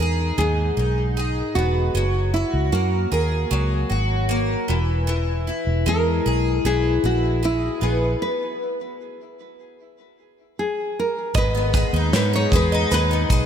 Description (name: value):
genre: acoustic pop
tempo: 77 BPM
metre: 4/4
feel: straight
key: unclear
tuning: A4 = 441 Hz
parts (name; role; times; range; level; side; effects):
- nylon-string guitar; melody; 0.0-13.5 s; E4 to C#5; -25 LUFS; right 1 dB; slapback echo, ping-pong delay
- picked twelve-string acoustic guitar; accompaniment; 0.0-13.5 s; G#2 to G#4; -24 LUFS; left 2 dB; double-tracked left and right, slapback echo
- vintage muted fingered electric bass; bass; 0.0-13.5 s; E1 to G#2; -22 LUFS; equal; none
- open-back banjo; arpeggios; 11.3-13.1 s; B4 to D#5; -30 LUFS; right 3 dB; slapback echo
- loose indie drum kit; drums; 11.3-13.5 s; kick drum, shaker, snare drum; -22 LUFS; equal; none
room: light reverb, small room ambience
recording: none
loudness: -19 LUFS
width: side -8 dB against mid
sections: 0.0-11.3 A section; 11.3-13.5 B section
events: stop 8.2-11.3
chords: 0.0 G#m; 1.9 F#add9; 4.7 E; 8.2 N.C.; 11.3 G#m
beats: 0.38 1.16 | 1.95 2.73 3.51 4.30 | 5.08 5.86 6.65 7.43 | 8.21 9.00 9.78 10.56 | 11.35 12.13 12.91